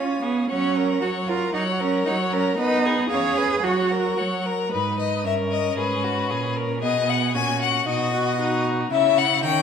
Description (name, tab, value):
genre	quick classical-period movement for string quartet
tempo	114 BPM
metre	2/4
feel	straight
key	F# major, G# minor from 4.7 s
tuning	A4 = 441 Hz
part	clear violin	melody	0.0-9.6 s	B4 to A#5	-25 LUFS	left 9 dB	none
part	warm violin	second line	0.0-9.6 s	D#4 to C#5	-28 LUFS	left 3 dB	none
part	warm viola	accompaniment	0.0-9.6 s	F#3 to F#4	-27 LUFS	right 2 dB	none
part	rich cello	bass	0.0-9.6 s	G2 to G#4	-25 LUFS	right 5 dB	none
room	wet recital hall reverb, RT60 1.7 s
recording	none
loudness	-20 LUFS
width	side -7 dB against mid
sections	0.0-4.7 A section; 4.7-9.6 B section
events	none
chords	0.5 F#; 2.6 G#m/B; 3.1 C#7; 3.6 F#; 4.7 G#m; 5.2 D#/G; 5.8 G#m; 6.8 B; 7.3 F#/A#; 7.9 B; 8.9 C#m